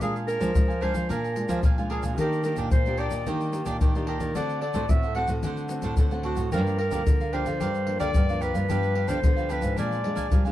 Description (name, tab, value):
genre	samba and choro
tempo	111 BPM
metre	4/4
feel	straight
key	unclear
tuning	A4 = 439 Hz
part	warm clarinet	melody	0.0-10.5 s	F#4 to F#5	-29 LUFS	equal	plate reverb
part	cavaquinho	accompaniment	0.0-10.5 s	D4 to Ab5	-34 LUFS	right 4 dB	none
part	nylon-string guitar	accompaniment	0.0-10.5 s	F2 to G4	-33 LUFS	left 1 dB	none
part	nylon-string guitar	bass	0.0-10.5 s	G2 to Ab3	-30 LUFS	right 1 dB	none
part	tube shaker, surdo and pandeiro	percussion	0.0-10.5 s	none	-26 LUFS	left 1 dB	none
room	light reverb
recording	dark, warm production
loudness	-23 LUFS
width	side -14 dB against mid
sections	0.0-10.5 A section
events	none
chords	0.0 Bb7; 2.2 Ebmaj7; 4.4 D7; 6.5 Gm7; 8.7 G7; 9.8 Bb7